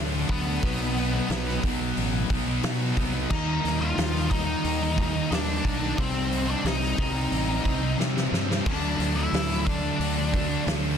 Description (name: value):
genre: quiet-loud alternative rock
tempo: 90 BPM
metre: 4/4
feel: straight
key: unclear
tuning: A4 = 440 Hz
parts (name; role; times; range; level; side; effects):
- high-gain distorted guitar; riff; 0.0-11.0 s; B2 to Eb4; -33 LUFS; left 2 dB; distortion
- thick fuzz guitar; riff; 0.0-11.0 s; B2 to D#4; -32 LUFS; left 12 dB; distortion
- thick fuzz guitar; riff; 0.0-11.0 s; B2 to D#4; -31 LUFS; right 12 dB; distortion
- fuzz fingered electric bass; bass; 0.0-10.9 s; A1 to C3; -29 LUFS; equal; overdrive
- octave-fuzz lead guitar; melody; 0.3-10.6 s; B3 to F5; -30 LUFS; left 1 dB; distortion, slapback echo
- loose indie drum kit; drums; 0.3-10.8 s; crash cymbal, hi-hat, kick drum, snare drum; -30 LUFS; equal; none
room: light reverb, studio reverb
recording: dense, heavily limited modern master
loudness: -23 LUFS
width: side -8 dB against mid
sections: 0.0-11.0 A section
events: drum fill 8.0-8.7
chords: 0.0 D; 0.6 B; 3.3 Eb; 6.0 Cm; 8.7 D